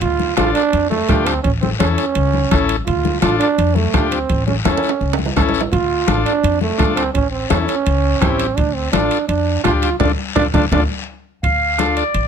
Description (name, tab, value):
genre	latin, cumbia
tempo	168 BPM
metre	4/4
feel	straight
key	D harmonic minor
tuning	A4 = 442 Hz
part	growling trombone	second line	0.0-10.8 s	A3 to F4	-19 LUFS	right 7 dB	none
part	upright bass	bass	0.0-12.3 s	A1 to F2	-21 LUFS	left 1 dB	none
part	bombo	percussion	0.0-12.0 s	none	-21 LUFS	right 2 dB	none
part	congas	percussion	0.0-12.3 s	none	-23 LUFS	left 9 dB	none
part	guiro	percussion	0.0-12.3 s	none	-30 LUFS	left 8 dB	none
part	timbales	percussion	0.0-12.3 s	none	-26 LUFS	right 9 dB	none
part	combo organ	accompaniment	0.4-12.0 s	C#4 to A4	-20 LUFS	left 7 dB	none
part	warm clarinet	melody	11.4-12.3 s	D5 to F5	-17 LUFS	right 1 dB	none
room	little or no reverb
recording	close, detailed microphones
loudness	-14 LUFS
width	side -7 dB against mid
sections	0.0-11.4 A section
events	trombone solo 0.0-11.4; drum fill 4.7-5.7, 10.0-11.4; band accent 10.0-11.4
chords	0.0 Dm; 1.4 A; 2.9 Dm; 4.3 A; 5.7 Dm; 7.2 A7; 8.6 Dm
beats	| 0.02 0.37 0.73 1.09 | 1.44 1.80 2.16 2.51 | 2.87 3.23 3.58 3.94 | 4.30 4.66 5.01 5.37 | 5.72 6.08 6.44 6.79 | 7.15 7.51 7.87 8.22 | 8.58 8.94 9.29 9.65 | 10.01 10.36 10.72 11.07 | 11.43 11.79 12.15